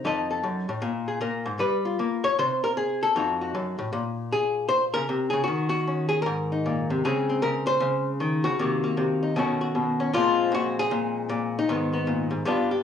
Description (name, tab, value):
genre	solo jazz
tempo	155 BPM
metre	4/4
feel	swing 64% on 8ths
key	Bb minor, Db major from 7.0 s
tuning	A4 = 440 Hz
part	archtop guitar, miked and amplified	solo	0.0-12.8 s	F2 to Eb5	-23 LUFS	left 2 dB	cassette tape
room	moderate studio reverb, RT60 0.6 s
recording	home recording on cassette, studio reverb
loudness	-23 LUFS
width	side -8 dB against mid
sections	0.0-7.0 A section; 7.0-12.8 B section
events	none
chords	0.0 F7b9; 0.8 Absus2; 1.6 G7#9; 2.4 N.C.; 3.1 F7b9; 3.9 Bbm9; 5.5 Ebm7; 6.3 Abadd9; 7.0 Db5; 8.6 Cm7b5; 9.4 Cb9; 10.1 Bbsus2; 11.7 Abmadd9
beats	0.03 0.42 | 0.81 1.20 1.59 1.98 | 2.37 2.75 3.14 3.53 | 3.92 4.31 4.70 5.09 | 5.47 5.86 6.25 6.64 | 7.03 7.42 7.80 8.19 | 8.58 8.97 9.35 9.74 | 10.13 10.52 10.90 11.29 | 11.68 12.07 12.45